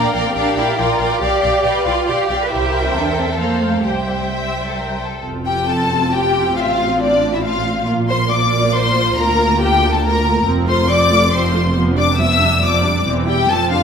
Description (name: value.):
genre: quick classical-period movement for string orchestra.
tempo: 138 BPM.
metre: 3/4.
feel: rubato.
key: F major, C major from 10.5 s.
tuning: A4 = 440 Hz.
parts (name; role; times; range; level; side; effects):
rich studio violin section; melody; 0.0-13.8 s; E4 to E6; -19 LUFS; left 4 dB; none.
rich studio violin section; second line; 0.0-13.8 s; D4 to G5; -20 LUFS; left 2 dB; none.
rich studio viola section; accompaniment; 0.0-13.8 s; D3 to D5; -22 LUFS; right 1 dB; none.
warm studio cello section; bass; 0.0-13.8 s; D2 to B4; -22 LUFS; right 2 dB; none.
rich studio double bass section; bass; 0.1-13.8 s; E1 to F2; -22 LUFS; right 2 dB; none.
room: wet scoring stage reverb, RT60 1.7 s.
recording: minimal, uncompressed stereo recording.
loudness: -14 LUFS.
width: side -7 dB against mid.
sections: 0.0-5.2 A section; 5.2-13.8 B section.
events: none.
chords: 0.0 Gm7/Bb; 1.2 G7/B; 2.5 C7; 3.4 F; 3.9 C; 5.2 F; 6.6 F/A; 7.9 Bb; 9.2 Bb/D; 10.5 F; 11.8 G7/F; 13.1 C/E.